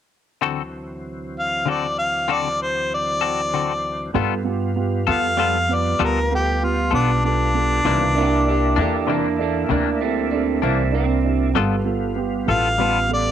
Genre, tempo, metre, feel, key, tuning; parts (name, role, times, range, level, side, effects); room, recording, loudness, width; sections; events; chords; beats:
blues; 65 BPM (dotted quarters); 12/8; straight; G mixolydian; A4 = 440 Hz
semi-hollow electric guitar; accompaniment; 0.4-13.0 s; C3 to A4; -24 LUFS; left 11 dB; harmonic tremolo
tonewheel organ; sustained chords; 0.4-13.3 s; D2 to F4; -28 LUFS; equal; slow rotary speaker, chorus vibrato
clear harmonica; melody; 1.4-13.3 s; D4 to F5; -21 LUFS; left 1 dB; overdrive, slapback echo
dark baby grand piano; accompaniment; 4.1-13.3 s; B3 to C5; -26 LUFS; right 11 dB
upright bass; bass; 4.1-13.3 s; G1 to G2; -23 LUFS; equal
electric guitar through a small old amp; second line; 8.2-11.5 s; G3 to G4; -23 LUFS; right 10 dB
light reverb, small room ambience; 1960s-style stereo with parts hard left and right; -18 LUFS; side -9 dB against mid
0.4-4.1 A section; 4.1-13.3 B section
0.4 D7; 4.1 G9; 7.9 C9; 11.6 G9
| 0.43 1.36 2.29 3.22 | 4.14 5.07 6.00 6.93 | 7.85 8.78 9.71 10.63 | 11.56 12.49